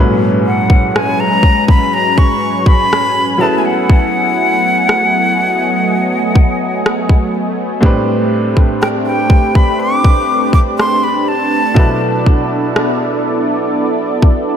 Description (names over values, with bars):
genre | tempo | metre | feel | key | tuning
contemporary R&B | 61 BPM | 4/4 | straight | unclear | A4 = 441 Hz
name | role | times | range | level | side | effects
clear grand piano | accompaniment | 0.0-14.6 s | G#2 to B4 | -18 LUFS | equal | none
warm analog pad | sustained chords | 0.0-14.6 s | F#3 to G#5 | -16 LUFS | equal | chorus
breathy bright jazz flute | melody | 0.5-12.3 s | F#5 to D6 | -15 LUFS | left 1 dB | ping-pong delay
trap drum kit | drums | 0.7-14.5 s | kick drum, rim click | -12 LUFS | equal | none
room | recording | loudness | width
moderate plate reverb, RT60 2.8 s | dreamy mix soaked in reverb | -10 LUFS | side -8 dB against mid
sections
0.0-14.6 A section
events
grand piano fill 14.2-14.6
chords
0.0 G#m11; 3.4 F#m11; 7.8 Am11; 11.8 Bm7